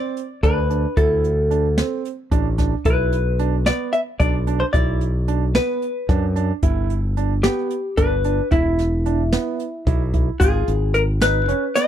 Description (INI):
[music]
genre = progressive instrumental, band music in an uneven meter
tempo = 222 BPM (eighths)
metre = 7/8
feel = straight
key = unclear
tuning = A4 = 440 Hz
[part]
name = vintage hollow-body jazz guitar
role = melody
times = 0.0-11.9 s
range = E4 to E5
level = -22 LUFS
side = left 2 dB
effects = none
[part]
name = warm concert grand piano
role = arpeggios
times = 0.0-11.9 s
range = B3 to F4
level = -26 LUFS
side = right 14 dB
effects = none
[part]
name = jazz brush drum kit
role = drums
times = 0.2-11.9 s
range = hi-hat, kick drum, snare drum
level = -21 LUFS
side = equal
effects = none
[part]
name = modern bright fingered electric bass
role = bass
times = 0.4-11.5 s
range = E1 to F#2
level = -20 LUFS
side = equal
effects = none
[part]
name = egg shaker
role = percussion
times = 10.4-11.9 s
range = none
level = -37 LUFS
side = left 20 dB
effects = none
[sound]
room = small room ambience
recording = dry, close 1970s-style studio recording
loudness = -17 LUFS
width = side -10 dB against mid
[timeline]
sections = 0.0-10.4 A section; 10.4-11.9 B section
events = none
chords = 0.0 D5; 2.9 Bm; 6.6 G; 8.5 E5; 10.4 G#m